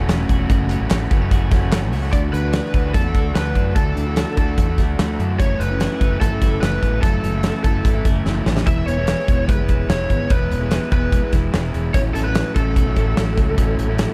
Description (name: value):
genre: jangly indie pop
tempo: 147 BPM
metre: 4/4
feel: straight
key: unclear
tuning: A4 = 436 Hz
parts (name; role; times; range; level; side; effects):
- crunchy overdriven guitar; accompaniment; 0.0-14.1 s; F#2 to F#4; -29 LUFS; equal; dub echo
- twelve-string electric guitar; arpeggios; 0.0-14.1 s; F#2 to F#4; -31 LUFS; equal; dub echo
- fretless electric bass; bass; 0.0-14.0 s; E1 to F#2; -25 LUFS; equal; lush chorus
- big rock drum kit; drums; 0.1-14.1 s; hi-hat, kick drum, snare drum; -22 LUFS; equal; none
- group handclap; percussion; 0.1-1.8 s; none; -39 LUFS; equal; none
- lead guitar through a small cranked amp; melody; 2.1-14.1 s; A4 to E5; -28 LUFS; equal; overdrive, dub echo
room: small room ambience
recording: echo-heavy mix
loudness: -19 LUFS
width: mono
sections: 0.0-2.1 A section; 2.1-14.1 B section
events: drum fill 8.3-8.7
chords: 0.0 F#m7; 2.1 Dadd9; 5.4 F#m7; 8.7 E; 11.9 A6